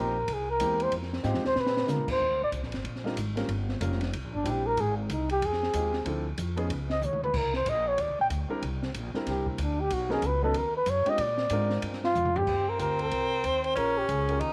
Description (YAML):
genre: jazz, small-group swing and bop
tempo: 187 BPM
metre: 4/4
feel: swing 62% on 8ths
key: Eb major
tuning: A4 = 440 Hz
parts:
  - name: breathy flugelhorn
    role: melody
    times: 0.0-14.4 s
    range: Bb3 to G5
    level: -30 LUFS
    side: equal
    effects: none
  - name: warm grand piano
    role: accompaniment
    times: 0.0-14.5 s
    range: F3 to C5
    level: -37 LUFS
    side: equal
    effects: none
  - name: upright bass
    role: bass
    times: 0.0-14.5 s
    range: F1 to D3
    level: -35 LUFS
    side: equal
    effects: none
  - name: open jazz drum kit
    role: drums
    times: 0.3-14.5 s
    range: crash cymbal, hi-hat, kick drum, ride cymbal, snare drum, toms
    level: -39 LUFS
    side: equal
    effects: none
  - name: bright tenor saxophone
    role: second line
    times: 12.5-14.5 s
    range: C4 to Eb4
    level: -33 LUFS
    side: equal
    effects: none
room: light reverb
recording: none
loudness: -29 LUFS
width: mono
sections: 0.0-2.2 A section; 2.2-12.5 A section; 12.5-14.5 B section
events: flugelhorn solo 0.0-12.5; drum fill 1.2-1.9, 7.0-7.3, 12.1-12.5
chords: 0.3 C7b13; 0.9 Fm7; 1.6 Bb7b9; 2.2 Ebmaj7; 3.5 Gm7b5; 4.1 C7; 4.8 Fm7; 6.1 Dm7; 6.7 Dbsus2; 7.3 C7(no3); 8.6 C9; 9.9 B; 11.2 Bb7; 12.5 Eb69; 13.8 Bbm7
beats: 0.28 0.60 | 0.92 1.24 1.56 1.88 | 2.21 2.53 2.85 3.17 | 3.49 3.81 4.13 4.45 | 4.77 5.09 5.42 5.74 | 6.06 6.38 6.70 7.02 | 7.34 7.66 7.98 8.30 | 8.62 8.94 9.26 9.58 | 9.90 10.22 10.54 10.87 | 11.19 11.51 11.83 12.15 | 12.47 12.79 13.11 13.44 | 13.76 14.08 14.40